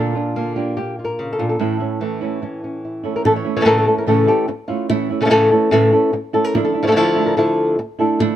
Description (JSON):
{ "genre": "flamenco", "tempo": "145 BPM", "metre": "4/4", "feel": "straight", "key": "unclear", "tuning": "A4 = 440 Hz", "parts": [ { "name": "flamenco guitar", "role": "melody", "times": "0.0-8.3 s", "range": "A2 to C#5", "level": "-16 LUFS", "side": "left 1 dB", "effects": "none" }, { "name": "flamenco guitar", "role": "stabs", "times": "0.0-8.4 s", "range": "A2 to F4", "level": "-22 LUFS", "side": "right 7 dB", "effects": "none" } ], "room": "light reverb", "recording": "close, detailed microphones", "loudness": "-15 LUFS", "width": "side -11 dB against mid", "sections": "0.0-3.2 A section; 3.2-8.4 B section", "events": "none", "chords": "0.0 Bb; 1.6 A; 6.5 Dmadd9" }